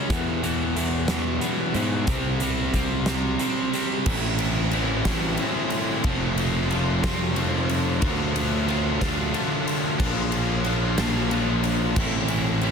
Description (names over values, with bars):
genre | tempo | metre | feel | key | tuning
quiet-loud alternative rock | 61 BPM (dotted quarters) | 6/8 | straight | A phrygian from 4.1 s | A4 = 441 Hz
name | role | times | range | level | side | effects
distorted electric guitar | riff | 0.0-12.7 s | E2 to F4 | -25 LUFS | equal | distortion
fuzz picked electric bass | bass | 0.1-12.7 s | F1 to G#2 | -26 LUFS | equal | overdrive
huge arena drum kit | drums | 0.1-12.7 s | crash cymbal, hi-hat, kick drum, ride cymbal, snare drum | -27 LUFS | equal | none
room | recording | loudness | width
little or no reverb | dense, heavily limited modern master | -21 LUFS | side -6 dB against mid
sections
0.0-4.1 A section; 4.1-12.7 B section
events
none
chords
0.1 E; 2.1 C5; 4.1 Am; 6.0 F; 8.0 Dm; 10.0 Bb; 12.0 Am